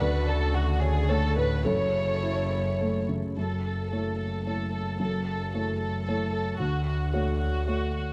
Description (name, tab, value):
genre	neoclassical piano and strings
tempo	110 BPM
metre	3/4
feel	rubato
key	F# minor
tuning	A4 = 440 Hz
part	warm chamber violin section	melody	0.0-8.1 s	F#4 to C#5	-34 LUFS	equal	none
part	felt-muted upright piano	accompaniment	0.0-8.1 s	D2 to D5	-33 LUFS	equal	none
part	dark chamber string section	sustained chords	0.0-3.4 s	C#3 to A4	-40 LUFS	equal	none
part	dark double bass	bass	0.0-8.1 s	F#1 to D2	-31 LUFS	equal	none
room	moderate spring reverb, RT60 1.3 s, small room ambience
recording	none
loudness	-28 LUFS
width	mono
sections	0.0-3.4 A section; 3.4-8.1 B section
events	none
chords	0.0 Dmaj7; 1.7 F#m7; 6.6 Dmaj7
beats	| 0.00 0.55 1.09 | 1.66 2.23 2.80 | 3.36 3.91 4.45 | 4.99 5.53 6.06 | 6.59 7.13 7.67